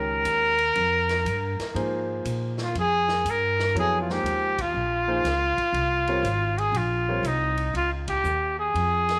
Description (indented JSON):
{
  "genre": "modal jazz",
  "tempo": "120 BPM",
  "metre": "4/4",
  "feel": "swing 66% on 8ths",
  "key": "Bb dorian",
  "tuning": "A4 = 440 Hz",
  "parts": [
    { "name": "warm trumpet", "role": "melody", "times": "0.0-9.2 s", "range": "Eb4 to Bb4", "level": "-26 LUFS", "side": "equal", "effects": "none" },
    { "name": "warm concert grand piano", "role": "accompaniment", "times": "0.0-7.2 s", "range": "Eb3 to Db5", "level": "-34 LUFS", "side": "equal", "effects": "none" },
    { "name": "upright bass", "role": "bass", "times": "0.0-9.2 s", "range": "Ab1 to Bb2", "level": "-32 LUFS", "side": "equal", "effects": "none" },
    { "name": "swinging big-band drum kit", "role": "drums", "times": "0.2-9.2 s", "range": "hi-hat, kick drum, ride cymbal, snare drum", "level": "-41 LUFS", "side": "equal", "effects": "none" }
  ],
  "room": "light reverb, studio reverb",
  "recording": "none",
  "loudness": "-25 LUFS",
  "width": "mono",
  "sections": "0.0-9.2 A section",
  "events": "band accent 4.5, 8.0",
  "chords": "0.0 Bbm9",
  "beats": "0.25 | 0.75 1.25 1.75 2.25 | 2.75 3.25 3.75 4.25 | 4.75 5.25 5.75 6.25 | 6.75 7.25 7.75 8.25 | 8.75"
}